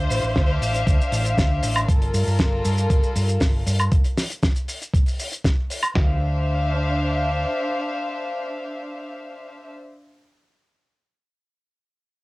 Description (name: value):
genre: nu-disco, nu disco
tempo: 118 BPM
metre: 4/4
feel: straight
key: D minor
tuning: A4 = 438 Hz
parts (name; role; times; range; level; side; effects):
- warm studio violin section; melody; 0.0-0.8 s; C5; -29 LUFS; equal; cassette tape, tape echo
- warm chamber string section; sustained chords; 0.0-9.7 s; G3 to F5; -26 LUFS; left 1 dB; sidechain pumping, cassette tape
- hollow-body short-scale fingered electric bass; bass; 0.0-7.4 s; G1 to G2; -23 LUFS; equal; tube saturation
- damped 70s drum kit; drums; 0.1-5.9 s; hi-hat, shaker, snare drum, woodblock; -25 LUFS; equal; studio ambience
- dusty soul sampler-style drum kit; drums; 0.4-6.1 s; kick drum, snare drum; -20 LUFS; equal; studio ambience
room: light reverb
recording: home recording on cassette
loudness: -19 LUFS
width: side -21 dB against mid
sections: 0.0-6.0 A section; 6.0-10.0 B section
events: drop 0.0-6.0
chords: 0.0 Dm9; 1.9 Gm9; 3.9 N.C.; 6.0 Dm9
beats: 0.36 0.87 1.38 | 1.89 2.39 2.90 3.41 | 3.92 4.43 4.94 5.45 | 5.95 6.46 6.97 7.48 | 7.99 8.50 9.00 9.51